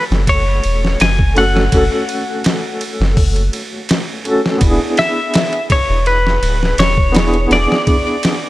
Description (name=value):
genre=trip hop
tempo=83 BPM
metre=4/4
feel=straight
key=F# minor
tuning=A4 = 440 Hz
part: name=twelve-string electric guitar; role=melody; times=0.0-8.5 s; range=B4 to G#5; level=-17 LUFS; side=left 1 dB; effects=tape echo
part: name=felt-muted upright piano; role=accompaniment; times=0.0-8.5 s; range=A3 to A4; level=-19 LUFS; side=equal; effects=tremolo, vintage 12-bit sampler grit, tape echo
part: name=soft dub sub bass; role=bass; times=0.1-7.7 s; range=D1 to F#1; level=-16 LUFS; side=equal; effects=none
part: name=boom bap sampler-style drum kit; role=drums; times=0.1-8.4 s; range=hi-hat, kick drum, ride cymbal, snare drum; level=-17 LUFS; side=equal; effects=none
room=little or no reverb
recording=none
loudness=-12 LUFS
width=side -17 dB against mid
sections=0.0-8.5 A section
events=none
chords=0.0 F#m; 4.6 E7